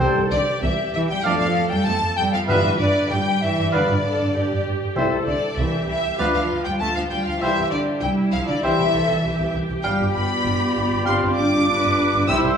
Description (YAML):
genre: quick classical-period movement for symphony orchestra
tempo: 98 BPM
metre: 4/4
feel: rubato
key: C major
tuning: A4 = 440 Hz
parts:
  - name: warm oboe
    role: second line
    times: 0.0-12.5 s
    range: D5 to G5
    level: -30 LUFS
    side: right 4 dB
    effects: none
  - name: rich chamber viola section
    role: accompaniment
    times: 0.0-12.6 s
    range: E4 to C5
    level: -28 LUFS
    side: equal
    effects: none
  - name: warm bassoon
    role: accompaniment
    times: 0.0-12.5 s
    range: G3 to D4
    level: -29 LUFS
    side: left 1 dB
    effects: none
  - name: mellow French horn section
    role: sustained chords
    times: 0.0-12.6 s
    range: F3 to G4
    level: -29 LUFS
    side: left 4 dB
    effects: none
  - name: warm trumpet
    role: stabs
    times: 0.0-12.6 s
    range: B4 to D5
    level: -29 LUFS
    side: equal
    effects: none
  - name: rich chamber double bass section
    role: bass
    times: 0.0-12.5 s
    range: G1 to G2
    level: -27 LUFS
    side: right 2 dB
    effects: none
  - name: timpani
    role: percussion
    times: 0.0-5.8, 12.3-12.6 s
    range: G2 to C3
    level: -29 LUFS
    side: right 1 dB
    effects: none
  - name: rich studio violin section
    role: melody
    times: 0.3-12.4 s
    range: D5 to E6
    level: -27 LUFS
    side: left 2 dB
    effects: none
  - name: mellow hollow silver concert flute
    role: second line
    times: 0.3-12.6 s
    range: D5 to E6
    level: -28 LUFS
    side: left 1 dB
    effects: none
  - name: rich chamber violin section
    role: second line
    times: 0.3-12.4 s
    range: D5 to E6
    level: -29 LUFS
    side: left 2 dB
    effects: none
  - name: dark chamber cello section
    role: bass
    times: 0.3-12.6 s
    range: D3 to E4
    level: -24 LUFS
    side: right 1 dB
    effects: none
room: wet recital hall reverb, RT60 1.9 s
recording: studio ambience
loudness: -18 LUFS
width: side -7 dB against mid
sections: 0.0-12.6 A section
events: none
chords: 0.0 C; 1.2 Dm/F; 2.5 G7; 5.0 C; 6.2 Bdim/D; 7.4 C; 9.8 G7